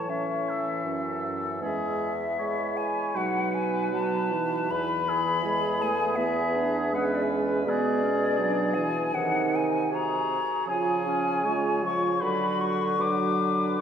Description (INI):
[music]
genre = classical, slow romantic movement for wind quintet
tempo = 79 BPM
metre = 4/4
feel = uneven beats, rubato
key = unclear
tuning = A4 = 444 Hz
[part]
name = hollow concert flute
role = melody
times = 0.0-13.8 s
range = D5 to D6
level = -28 LUFS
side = left 4 dB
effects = none
[part]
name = warm oboe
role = second line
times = 0.0-13.8 s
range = G#4 to C#5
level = -33 LUFS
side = left 1 dB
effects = none
[part]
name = clear French horn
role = accompaniment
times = 0.0-13.8 s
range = D#3 to B3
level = -31 LUFS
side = right 1 dB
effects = none
[part]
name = warm clarinet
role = accompaniment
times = 0.0-13.8 s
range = B3 to F#4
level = -33 LUFS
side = right 6 dB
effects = none
[part]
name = warm bassoon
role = bass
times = 0.0-13.8 s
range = E2 to D3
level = -32 LUFS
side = right 2 dB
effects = none
[sound]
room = wet concert hall reverb, RT60 2.2 s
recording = recorded in a church or concert hall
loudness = -24 LUFS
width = side -8 dB against mid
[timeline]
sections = 0.0-13.8 A section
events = none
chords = 0.0 A; 1.6 E; 3.2 B7; 4.7 E; 7.7 G#dim/B; 9.1 G#7/B#; 10.7 C#; 12.2 Bm/D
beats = 0.10 0.87 | 1.63 2.40 3.18 3.94 | 4.71 5.46 6.18 6.92 | 7.66 8.38 9.14 9.93 | 10.69 11.46 12.22 12.99 | 13.81